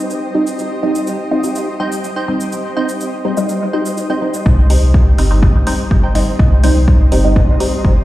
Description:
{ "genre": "dub techno", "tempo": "124 BPM", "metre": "4/4", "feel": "straight", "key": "C minor", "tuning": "A4 = 440 Hz", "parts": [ { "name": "granular cloud pad", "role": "sustained chords", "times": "0.0-8.0 s", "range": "G4 to Eb5", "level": "-25 LUFS", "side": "equal", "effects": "built-in reverb, sidechain pumping" }, { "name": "filtered dub chord stab", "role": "stabs", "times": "0.0-7.8 s", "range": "G3 to Eb4", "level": "-18 LUFS", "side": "equal", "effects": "phaser, cassette tape, dub echo" }, { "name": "metallic inharmonic drone", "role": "texture", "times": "0.0-4.5 s", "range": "C4", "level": "-32 LUFS", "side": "equal", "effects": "chorus, built-in reverb, sidechain pumping" }, { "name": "electronic cabasa and hi-hat", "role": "drums", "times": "0.1-7.7 s", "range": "none", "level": "-30 LUFS", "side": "equal", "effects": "overdrive" }, { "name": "wavetable chord stab", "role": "riff", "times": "1.8-6.8 s", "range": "Eb4 to G5", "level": "-26 LUFS", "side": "right 1 dB", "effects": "vintage 12-bit sampler grit, sidechain pumping, dub echo" }, { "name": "round analog bass", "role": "bass", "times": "4.5-8.0 s", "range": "G1 to C2", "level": "-12 LUFS", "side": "equal", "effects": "sidechain pumping" }, { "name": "electronic kick drum", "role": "drums", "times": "4.5-7.9 s", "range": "none", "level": "-12 LUFS", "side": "equal", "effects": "overdrive" } ], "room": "light reverb", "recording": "played on a big sound system in a bare room, large studio reverb", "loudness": "-12 LUFS", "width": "side -15 dB against mid", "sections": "0.0-4.5 A section; 4.5-8.0 B section", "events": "filter sweep on synth stab 0.0-4.5, 4.5-8.0", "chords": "0.0 Cm" }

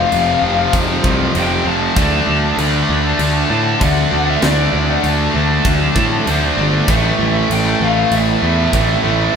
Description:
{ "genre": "heavy metal", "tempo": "98 BPM", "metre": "4/4", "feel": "straight", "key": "unclear", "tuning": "A4 = 441 Hz", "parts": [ { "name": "bluesy overdriven lead guitar", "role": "melody", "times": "0.0-9.4 s", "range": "C5 to B5", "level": "-20 LUFS", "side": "left 3 dB", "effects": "distortion" }, { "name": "biting overdriven guitar", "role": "riff", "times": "0.0-9.4 s", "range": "F2 to D4", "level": "-23 LUFS", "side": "equal", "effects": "none" }, { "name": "heavy high-gain guitar", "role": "riff", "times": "0.0-9.3 s", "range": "F2 to D4", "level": "-20 LUFS", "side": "left 7 dB", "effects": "distortion" }, { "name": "heavy high-gain guitar", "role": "riff", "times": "0.0-9.4 s", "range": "F2 to D4", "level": "-20 LUFS", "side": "right 7 dB", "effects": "distortion" }, { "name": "fuzz picked electric bass", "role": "bass", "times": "0.0-9.3 s", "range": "F1 to A2", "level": "-18 LUFS", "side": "equal", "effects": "overdrive" }, { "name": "tight metal drum kit", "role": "drums", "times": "0.1-8.9 s", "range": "crash cymbal, kick drum, snare drum", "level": "-22 LUFS", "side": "equal", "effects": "none" } ], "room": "moderate studio ambience, RT60 0.4 s", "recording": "band playing live in one room", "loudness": "-13 LUFS", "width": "side -6 dB against mid", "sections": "0.0-9.4 A section", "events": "half time 0.0-9.4", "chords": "0.0 F5; 2.0 D5; 6.9 A5" }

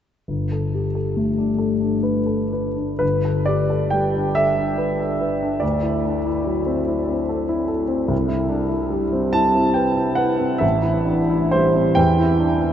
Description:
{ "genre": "classical, impressionist solo piano", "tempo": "39-50 BPM (dotted quarters)", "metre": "6/8", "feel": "rubato", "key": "G major", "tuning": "A4 = 440 Hz", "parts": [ { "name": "warm grand piano", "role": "solo", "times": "0.3-12.7 s", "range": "G1 to A5", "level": "-18 LUFS", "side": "equal", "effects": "none" } ], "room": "wet huge ambient reverb, RT60 7.5 s", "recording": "in a vast, echoing space, nothing above 7.9 kHz", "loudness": "-18 LUFS", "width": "side -9 dB against mid", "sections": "0.3-3.0 A section; 3.0-12.7 B section", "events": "none", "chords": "0.3 Gadd9; 5.6 D9; 8.1 Cmaj7; 10.6 Am7; 12.0 Em" }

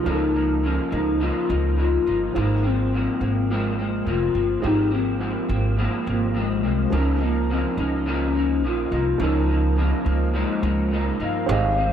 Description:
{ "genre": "indie pop", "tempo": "105 BPM", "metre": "4/4", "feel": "swing 60% on 16ths", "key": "unclear", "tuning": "A4 = 440 Hz", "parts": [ { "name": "hollow clarinet-like synth lead", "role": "melody", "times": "0.0-11.9 s", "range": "Ab3 to F5", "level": "-24 LUFS", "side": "left 2 dB", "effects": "lush chorus, plate reverb" }, { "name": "electric guitar through a small old amp", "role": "accompaniment", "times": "0.0-11.9 s", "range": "Ab2 to Eb4", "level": "-27 LUFS", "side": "left 2 dB", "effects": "ensemble chorus, vibrato effect, plate reverb" }, { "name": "warm upright piano", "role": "accompaniment", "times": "0.0-11.9 s", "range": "F3 to Eb5", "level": "-31 LUFS", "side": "right 9 dB", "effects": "plate reverb" }, { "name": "upright bass", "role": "bass", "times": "0.1-11.9 s", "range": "F1 to Db2", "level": "-24 LUFS", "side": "right 1 dB", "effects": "none" } ], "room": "light reverb", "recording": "none", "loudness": "-20 LUFS", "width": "side -9 dB against mid", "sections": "0.0-11.5 A section", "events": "none", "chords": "0.0 Db69; 2.4 Ab69; 6.9 Db69" }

